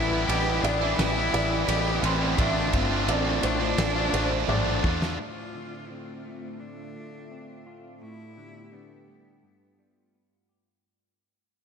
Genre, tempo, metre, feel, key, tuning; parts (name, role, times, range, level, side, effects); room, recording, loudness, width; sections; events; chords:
post-rock; 85 BPM; 4/4; straight; A4 = 440 Hz
bright cello; melody; 0.0-10.1 s; B3 to G4; -32 LUFS; left 2 dB; tape echo
warbly tape-like pad; sustained chords; 0.0-10.8 s; G2 to C6; -39 LUFS; equal; chorus, built-in reverb
felt-muted upright piano; arpeggios; 0.0-5.2 s; B4 to C6; -33 LUFS; right 2 dB; analog chorus, tape echo
distorted electric guitar; riff; 0.0-5.2 s; A2 to F4; -31 LUFS; left 11 dB; overdrive
distorted electric guitar; riff; 0.0-5.2 s; A2 to F4; -30 LUFS; right 12 dB; overdrive
fingered electric bass; bass; 0.0-5.2 s; G1 to E2; -29 LUFS; equal
loose indie drum kit; drums; 0.3-5.2 s; kick drum, ride cymbal, snare drum, toms; -30 LUFS; equal
clean electric guitar; arpeggios; 5.2-10.8 s; G2 to G4; -45 LUFS; left 2 dB; lush chorus, tape echo
moderate huge ambient reverb, RT60 4.8 s; dreamy mix soaked in reverb; -22 LUFS; side -7 dB against mid
0.0-5.2 A section; 5.2-10.8 B section
drum fill 4.5-5.2; fade-out 5.2-10.8
0.0 Em7/A; 2.4 Dm7; 5.2 Dm7/A; 8.0 Em7/A; 9.4 G7